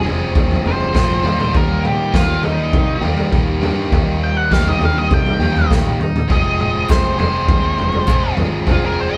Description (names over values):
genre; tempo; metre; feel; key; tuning
indie rock; 101 BPM; 4/4; straight; unclear; A4 = 442 Hz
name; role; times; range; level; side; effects
octave-fuzz lead guitar; melody; 0.0-9.2 s; Eb4 to G5; -23 LUFS; equal; distortion
biting overdriven guitar; riff; 0.0-9.2 s; F2 to Ab4; -23 LUFS; equal; none
picked electric bass; bass; 0.0-9.2 s; F1 to C3; -23 LUFS; equal; none
raw garage drum kit; drums; 0.1-8.8 s; kick drum, snare drum, toms; -20 LUFS; equal; none
group handclap; percussion; 6.9-8.2 s; none; -40 LUFS; equal; none
room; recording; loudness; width
light reverb; band playing live in one room; -16 LUFS; mono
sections
0.0-9.2 A section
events
lead electric guitar solo 0.0-9.2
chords
0.0 Fm7; 1.3 Eb; 6.3 Fm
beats
0.36 0.96 | 1.55 2.14 2.74 3.33 | 3.93 4.52 5.11 5.71 | 6.30 6.90 7.49 8.09 | 8.68